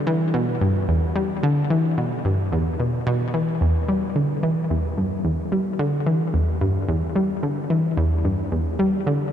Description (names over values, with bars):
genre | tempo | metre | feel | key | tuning
ambient | 110 BPM | 4/4 | straight | E minor | A4 = 436 Hz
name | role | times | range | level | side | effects
analog pluck | solo | 0.1-9.3 s | E2 to G3 | -20 LUFS | equal | chorus, ping-pong delay
room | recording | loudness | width
wet huge ambient reverb, RT60 7.8 s | dark, warm production | -20 LUFS | side -9 dB against mid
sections
0.0-9.3 A section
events
none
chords
none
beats
0.34 0.88 | 1.43 1.98 2.52 3.07 | 3.61 4.16 4.70 5.25 | 5.79 6.34 6.88 7.43 | 7.97 8.52 9.07